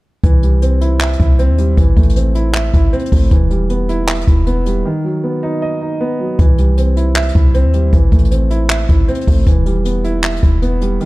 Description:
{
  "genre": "hip hop, trap",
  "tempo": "156 BPM",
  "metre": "4/4",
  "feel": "half-time",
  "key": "E harmonic minor",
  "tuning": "A4 = 440 Hz",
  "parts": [
    { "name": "dark concert grand piano", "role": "accompaniment", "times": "0.2-11.1 s", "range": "D#3 to E5", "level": "-18 LUFS", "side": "right 1 dB", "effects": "none" },
    { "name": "clean 808-style bass", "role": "bass", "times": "0.2-11.0 s", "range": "E1 to D#2", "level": "-14 LUFS", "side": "equal", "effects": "none" },
    { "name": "jazz brush drum kit", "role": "drums", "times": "0.2-11.1 s", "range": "handclaps, hi-hat, kick drum", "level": "-14 LUFS", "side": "equal", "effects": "none" }
  ],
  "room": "studio ambience",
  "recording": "dark, warm production",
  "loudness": "-11 LUFS",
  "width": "side -20 dB against mid",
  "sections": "0.2-11.1 A section",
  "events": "break 4.9-6.4",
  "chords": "0.2 C; 1.8 Am; 3.3 Em; 4.9 B; 6.4 C; 7.9 Am; 9.5 Em",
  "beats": "| 0.24 0.62 1.01 1.39 | 1.77 2.16 2.54 2.93 | 3.31 3.70 4.08 4.47 | 4.85 5.24 5.62 6.01 | 6.39 6.78 7.16 7.54 | 7.93 8.31 8.70 9.08 | 9.47 9.85 10.24 10.62 | 11.01"
}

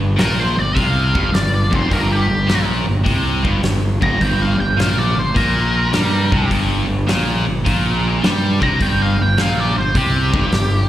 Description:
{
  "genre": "blues rock power trio and southern rock",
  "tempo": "104 BPM",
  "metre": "4/4",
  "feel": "swing 67% on 8ths",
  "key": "G minor",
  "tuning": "A4 = 441 Hz",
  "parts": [
    { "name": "sludgy distorted guitar", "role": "riff", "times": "0.0-10.8 s", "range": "F2 to G3", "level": "-19 LUFS", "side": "equal", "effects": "overdrive" },
    { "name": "fuzz fingered electric bass", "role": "bass", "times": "0.0-10.9 s", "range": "F1 to G2", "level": "-19 LUFS", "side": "equal", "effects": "overdrive" },
    { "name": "octave-fuzz lead guitar", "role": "melody", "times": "0.2-10.9 s", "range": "G4 to Bb5", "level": "-21 LUFS", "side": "equal", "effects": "wah, distortion, slapback echo" },
    { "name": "huge arena drum kit", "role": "drums", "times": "0.2-10.7 s", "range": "hi-hat, kick drum, snare drum", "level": "-22 LUFS", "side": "equal", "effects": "none" }
  ],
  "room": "little or no reverb",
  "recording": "live gig heard through the venue's PA, recital hall reverb",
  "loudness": "-14 LUFS",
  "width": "side -13 dB against mid",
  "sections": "0.0-10.9 A section",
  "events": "lead electric guitar solo 0.0-10.9",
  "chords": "0.0 Gm",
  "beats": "0.18 0.76 1.33 | 1.91 2.48 3.06 3.63 | 4.21 4.78 5.36 5.93 | 6.51 7.08 7.66 8.23 | 8.80 9.38 9.95 10.52"
}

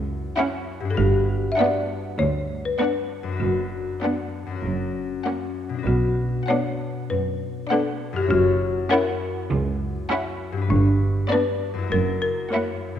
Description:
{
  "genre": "cinematic, playful, whimsical film cue",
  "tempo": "99 BPM",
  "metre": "4/4",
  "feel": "straight",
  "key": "B minor",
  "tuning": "A4 = 439 Hz",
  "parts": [
    { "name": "folk marimba with medium hard mallets", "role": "melody", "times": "0.0-13.0 s", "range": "D4 to E5", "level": "-25 LUFS", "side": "left 4 dB", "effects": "none" },
    { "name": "concert harp", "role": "arpeggios", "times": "0.0-13.0 s", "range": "F#2 to C#5", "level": "-29 LUFS", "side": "left 4 dB", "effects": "none" },
    { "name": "clear studio cello section", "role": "bass", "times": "0.0-12.4 s", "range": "C#2 to B2", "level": "-26 LUFS", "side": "right 3 dB", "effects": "none" },
    { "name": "rich studio violin section", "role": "melody", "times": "0.4-13.0 s", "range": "D5 to F#5", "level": "-31 LUFS", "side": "left 3 dB", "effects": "none" },
    { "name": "clear studio violin section", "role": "second line", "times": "0.4-13.0 s", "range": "C#4 to E4", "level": "-30 LUFS", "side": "left 1 dB", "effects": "none" },
    { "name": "rich studio viola section", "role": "accompaniment", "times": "0.4-13.0 s", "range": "A#3 to C#4", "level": "-28 LUFS", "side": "right 3 dB", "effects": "none" },
    { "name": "rich studio double bass section", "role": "bass", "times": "1.0-12.4 s", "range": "F#1 to B1", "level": "-27 LUFS", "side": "right 4 dB", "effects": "none" }
  ],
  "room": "moderate concert hall reverb, RT60 2.4 s",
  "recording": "dark, warm production",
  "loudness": "-21 LUFS",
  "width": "side -9 dB against mid",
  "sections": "0.0-13.0 A section",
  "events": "none",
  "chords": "0.0 F#7; 1.0 Gmaj7; 3.4 Bm/F#; 4.6 F#; 5.9 Bm; 8.3 F#7; 10.7 G; 11.9 F#7",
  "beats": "0.38 | 0.98 1.59 2.19 2.80 | 3.41 4.03 4.64 5.26 | 5.87 6.49 7.10 7.71 | 8.31 8.91 9.51 10.10 | 10.70 11.31 11.92 12.52"
}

